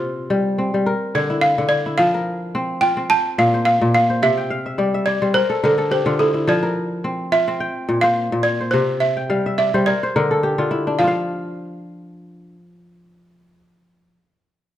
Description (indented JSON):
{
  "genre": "west african traditional, West African string and xylophone music",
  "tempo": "106 BPM",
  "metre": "4/4",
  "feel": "swing 54% on 16ths",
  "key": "unclear",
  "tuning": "A4 = 440 Hz",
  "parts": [
    { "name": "balafon", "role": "melody", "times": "0.0-14.1 s", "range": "A4 to A5", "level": "-18 LUFS", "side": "right 1 dB", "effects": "none" },
    { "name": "kora", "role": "arpeggios", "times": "0.0-14.3 s", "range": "Bb2 to G5", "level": "-20 LUFS", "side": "left 1 dB", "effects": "none" }
  ],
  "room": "moderate recital hall reverb, RT60 1.5 s",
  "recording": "none",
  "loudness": "-16 LUFS",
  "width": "side -12 dB against mid",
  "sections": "0.0-11.0 A section; 11.0-13.2 B section",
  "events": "kora fill 4.4-6.5, 9.2-11.0",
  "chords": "0.0 C5; 0.9 Dm9; 2.0 F5; 3.1 Bb5; 4.2 C; 5.4 N.C.; 6.5 F5; 7.6 Bb5; 8.7 C; 9.9 N.C."
}